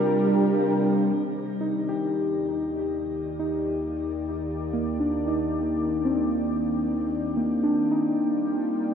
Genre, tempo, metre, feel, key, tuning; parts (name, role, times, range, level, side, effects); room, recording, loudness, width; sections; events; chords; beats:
ambient; 68 BPM; 4/4; straight; A4 = 444 Hz
warm analog pad; sustained chords; 0.0-8.9 s; Eb3 to G5; -30 LUFS; right 1 dB; chorus, shimmer reverb
muted felt-like synth keys; arpeggios; 0.0-8.9 s; Bb3 to G4; -24 LUFS; equal; chorus, diffuse ambient delay, shimmer reverb
bowed-like drone; drone; 0.0-1.3 s; C3 to G3; -30 LUFS; left 2 dB; built-in reverb
round analog bass; bass; 1.2-8.9 s; Eb2 to G2; -40 LUFS; equal
wet concert hall reverb, RT60 1.8 s; dark, warm production; -23 LUFS; side -7 dB against mid
0.0-1.2 A section; 1.2-8.9 B section
fade-in on analog synth pad 1.2-8.9; fade-in on analog synth bass 1.2-8.9
0.0 Gm7; 1.2 Ebmaj7; 8.3 Gm7
0.26 | 1.17 2.06 2.95 3.84 | 4.73 5.60 6.48 7.37 | 8.25